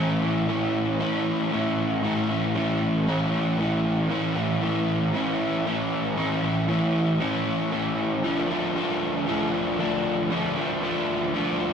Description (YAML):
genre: rock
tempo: 116 BPM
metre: 4/4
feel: straight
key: A major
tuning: A4 = 440 Hz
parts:
  - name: crunchy overdriven guitar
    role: solo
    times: 0.0-11.7 s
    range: A2 to E4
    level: -22 LUFS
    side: equal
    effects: none
room: wet small room reverb, RT60 0.5 s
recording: rough rehearsal-room recording, tube saturation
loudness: -22 LUFS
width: side -7 dB against mid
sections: 0.0-11.7 A section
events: none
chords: 0.0 A; 8.2 Dm